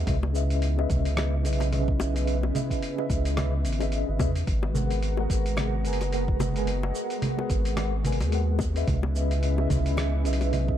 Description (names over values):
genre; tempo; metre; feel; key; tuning
sunset chillout; 109 BPM; 4/4; swing 57% on 16ths; unclear; A4 = 443 Hz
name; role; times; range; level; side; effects
mellow tine electric piano; accompaniment; 0.0-10.8 s; G#3 to G#5; -31 LUFS; moving between left 7 dB and right 7 dB; medium stereo tremolo, auto-pan, low-pass filter, tape echo
lush unison pad; sustained chords; 0.0-10.8 s; C#3 to A#5; -33 LUFS; equal; chorus, vintage 12-bit sampler grit
round analog bass; bass; 0.0-10.8 s; F#1 to E2; -26 LUFS; equal; none
dusty soul sampler-style drum kit; drums; 0.1-10.7 s; congas, hi-hat, rim click, shaker; -32 LUFS; right 2 dB; none
electronic kick drum; drums; 0.1-10.8 s; none; -28 LUFS; equal; overdrive
bongos; percussion; 0.2-10.5 s; none; -36 LUFS; left 6 dB; none
room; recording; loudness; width
light reverb, digital ambience; dark, warm production; -24 LUFS; side -10 dB against mid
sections
0.0-10.8 A section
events
none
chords
0.1 C#m9; 4.5 G#m9; 8.9 C#m9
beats
| 0.07 0.62 1.17 1.72 | 2.27 2.82 3.37 3.92 | 4.47 5.03 5.58 6.13 | 6.68 7.23 7.78 8.33 | 8.88 9.43 9.98 10.53